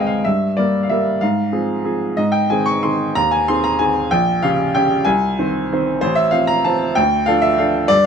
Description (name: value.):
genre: classical, piano waltz.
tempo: 188 BPM.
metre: 3/4.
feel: uneven beats, rubato.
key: unclear.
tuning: A4 = 440 Hz.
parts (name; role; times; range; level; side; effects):
clear upright piano; solo; 0.0-8.1 s; A1 to Db6; -15 LUFS; equal; none.
room: moderate studio reverb, RT60 0.8 s.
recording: none.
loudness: -15 LUFS.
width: side -7 dB against mid.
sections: 0.0-8.1 A section.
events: none.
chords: 0.2 Edim/G; 1.2 Fm/Ab; 2.2 Ab; 4.1 Gdim/Bb; 5.1 Ab/C; 6.0 F/A; 7.0 Dm.